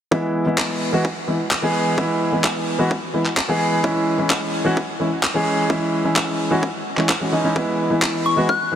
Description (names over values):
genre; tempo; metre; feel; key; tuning
EDM, festival progressive house; 129 BPM; 4/4; straight; E major; A4 = 440 Hz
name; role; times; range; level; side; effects
warm grand piano; accompaniment; 0.1-8.8 s; E3 to G#4; -19 LUFS; equal; sidechain pumping, tape echo
electronic kick drum; drums; 0.1-8.6 s; none; -25 LUFS; equal; high-pass filter on kick, studio reverb
electronic handclaps; drums; 0.6-8.1 s; none; -24 LUFS; equal; studio reverb
soft synth bell; melody; 8.3-8.7 s; C#6 to F#6; -19 LUFS; left 4 dB; chorus, phaser
room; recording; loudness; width
moderate huge ambient reverb, RT60 4.6 s; heavily compressed radio sound, multiband compression; -18 LUFS; side -9 dB against mid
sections
0.1-8.8 A section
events
none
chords
0.1 E; 3.8 C#m; 7.6 E